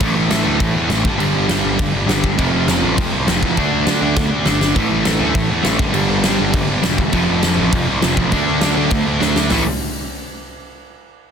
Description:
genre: punk rock.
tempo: 202 BPM.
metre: 4/4.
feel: straight.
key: unclear.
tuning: A4 = 440 Hz.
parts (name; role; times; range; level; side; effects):
high-gain distorted guitar; riff; 0.0-9.6 s; F2 to D4; -22 LUFS; left 1 dB; distortion.
overdriven semi-hollow guitar; riff; 0.0-9.6 s; F2 to D4; -20 LUFS; right 10 dB; none.
sludgy distorted guitar; riff; 0.0-9.6 s; F2 to D4; -22 LUFS; left 12 dB; overdrive.
fuzz picked electric bass; bass; 0.0-9.6 s; E1 to A2; -21 LUFS; equal; overdrive.
big rock drum kit; drums; 0.0-9.6 s; crash cymbal, hi-hat, kick drum, snare drum, toms; -20 LUFS; equal; none.
room: little or no reverb.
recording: dense, heavily limited modern master.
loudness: -14 LUFS.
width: side -7 dB against mid.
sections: 0.0-9.5 A section; 9.5-10.7 B section.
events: drum fill 4.2-4.8, 9.2.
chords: 0.0 A5; 1.0 G5; 2.4 F5; 3.6 D5; 4.8 A5; 5.8 G5; 7.1 F; 8.3 D5; 9.5 A5.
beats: | 0.00 0.29 0.59 0.89 | 1.19 1.49 1.78 2.08 | 2.38 2.68 2.98 3.27 | 3.57 3.87 4.17 4.46 | 4.76 5.05 5.35 5.65 | 5.95 6.24 6.54 6.83 | 7.13 7.43 7.72 8.02 | 8.32 8.62 8.91 9.21 | 9.51.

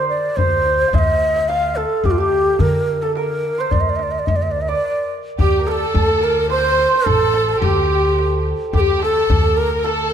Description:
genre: Persian modal ensemble.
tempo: 108 BPM.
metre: 3/4.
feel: straight.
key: D dastgah shur.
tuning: A4 = 440 Hz.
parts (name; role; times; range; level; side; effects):
breathy mellow ney; melody; 0.0-10.1 s; F4 to F5; -18 LUFS; equal; none.
santur; second line; 0.0-10.1 s; G4 to F5; -23 LUFS; right 5 dB; none.
upright bass; bass; 0.0-10.1 s; A1 to D3; -22 LUFS; equal; none.
tombak; percussion; 0.1-10.0 s; none; -22 LUFS; left 2 dB; none.
warm symphonic violin section; second line; 5.4-10.1 s; G4 to C5; -23 LUFS; left 1 dB; none.
room: light reverb.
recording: none.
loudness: -15 LUFS.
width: side -8 dB against mid.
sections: 0.0-5.4 A section; 5.4-10.1 B section.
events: stop 4.8-5.4.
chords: none.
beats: | 0.38 0.94 1.49 | 2.05 2.61 3.17 | 3.72 4.28 4.84 | 5.39 5.95 6.51 | 7.07 7.62 8.18 | 8.74 9.29 9.85.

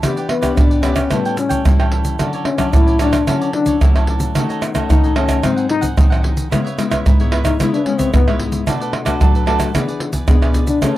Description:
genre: samba and choro.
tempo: 111 BPM.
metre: 4/4.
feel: straight.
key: unclear.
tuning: A4 = 440 Hz.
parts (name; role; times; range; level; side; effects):
cavaquinho; accompaniment; 0.0-11.0 s; D4 to A5; -26 LUFS; right 7 dB; none.
nylon-string guitar; accompaniment; 0.0-11.0 s; G#2 to B4; -22 LUFS; left 5 dB; none.
egg shaker, surdo, pandeiro and tamborim; percussion; 0.0-11.0 s; none; -15 LUFS; right 1 dB; none.
breathy trombone; second line; 0.3-11.0 s; B3 to E4; -18 LUFS; left 4 dB; none.
room: light reverb.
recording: dry, close 1970s-style studio recording.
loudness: -13 LUFS.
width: side -15 dB against mid.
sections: 0.0-11.0 A section.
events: trombone solo 0.0-11.0.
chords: 0.0 Em7; 1.1 A7; 2.2 Dmaj9; 4.4 D#m7b5; 5.4 G#7; 6.5 C#m7; 8.7 Bm7; 9.7 E7.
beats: | 0.03 0.57 1.11 1.65 | 2.19 2.73 3.27 3.81 | 4.35 4.89 5.43 5.97 | 6.51 7.05 7.59 8.13 | 8.67 9.21 9.74 10.28 | 10.82.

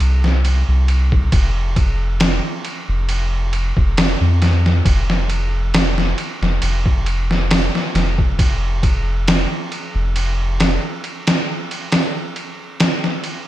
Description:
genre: trip hop.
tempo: 68 BPM.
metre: 4/4.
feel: swing 54% on 16ths.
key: unclear.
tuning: A4 = 438 Hz.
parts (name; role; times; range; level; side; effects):
soft dub sub bass; bass; 0.0-10.8 s; F1 to F2; -17 LUFS; equal; none.
trip hop sampler-style drum kit; drums; 0.0-13.5 s; kick drum, ride cymbal, snare drum; -18 LUFS; equal; overdrive, vintage 12-bit sampler grit, gated reverb.
room: light reverb.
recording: bright 1980s-style digital production.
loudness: -15 LUFS.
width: side -14 dB against mid.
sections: 0.0-13.5 A section.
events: none.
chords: none.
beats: 0.44 | 1.33 2.21 3.09 3.97 | 4.86 5.74 6.62 7.50 | 8.38 9.27 10.15 11.03 | 11.91 12.80.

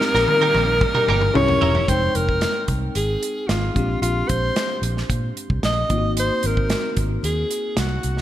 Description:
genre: polished 1980s jazz-funk pop.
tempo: 112 BPM.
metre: 4/4.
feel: straight.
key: F minor.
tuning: A4 = 440 Hz.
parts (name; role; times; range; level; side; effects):
warm alto saxophone; melody; 0.0-8.2 s; F4 to Eb5; -22 LUFS; equal; none.
mellow tine electric piano; accompaniment; 0.0-8.2 s; Ab3 to G5; -27 LUFS; left 3 dB; lush chorus.
warm studio string section; sustained chords; 0.0-1.9 s; Bb2 to Eb4; -30 LUFS; equal; none.
direct-recorded clean electric guitar; riff; 0.0-1.9 s; Db4 to Bb4; -26 LUFS; right 6 dB; analog chorus.
modern studio drum kit; drums; 0.0-8.2 s; hi-hat, kick drum, snare drum, toms; -24 LUFS; equal; gated reverb.
vintage muted fingered electric bass; bass; 0.1-8.2 s; E1 to Bb2; -23 LUFS; equal; none.
room: moderate lush hall reverb, RT60 2.4 s.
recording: bright 1980s-style digital production.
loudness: -18 LUFS.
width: side -12 dB against mid.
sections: 0.0-1.9 A section; 1.9-8.2 B section.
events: drum fill 0.0-1.9.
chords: 0.0 Cm7; 1.3 C7b9; 1.9 Fm9; 3.8 Bb13; 5.9 Ab7.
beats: 0.28 0.81 1.35 | 1.88 2.42 2.96 3.49 | 4.03 4.56 5.10 5.63 | 6.17 6.71 7.24 7.78.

